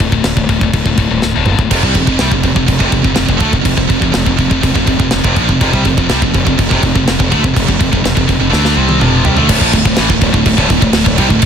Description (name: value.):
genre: heavy metal.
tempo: 123 BPM.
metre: 4/4.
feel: straight.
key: unclear.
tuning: A4 = 440 Hz.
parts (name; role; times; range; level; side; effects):
heavy high-gain guitar; riff; 0.0-11.5 s; D2 to D4; -15 LUFS; left 10 dB; distortion.
fuzz fingered electric bass; bass; 0.0-11.5 s; D1 to D2; -17 LUFS; equal; overdrive.
tight metal drum kit; drums; 0.0-11.5 s; crash cymbal, kick drum, snare drum, toms; -14 LUFS; equal; none.
heavy high-gain guitar; riff; 1.7-11.5 s; D2 to D4; -16 LUFS; right 15 dB; distortion.
room: small room ambience.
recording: dense, heavily limited modern master.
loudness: -10 LUFS.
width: side -8 dB against mid.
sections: 0.0-9.5 A section; 9.5-11.5 B section.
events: drum fill 1.2-1.7, 8.5-9.5.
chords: 0.0 D5; 1.7 F5; 9.5 D5.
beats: 0.25 0.73 1.22 | 1.71 2.20 2.69 3.17 | 3.66 4.15 4.63 5.12 | 5.61 6.09 6.58 7.07 | 7.55 8.04 8.52 9.01 | 9.49 9.98 10.46 10.95 | 11.43.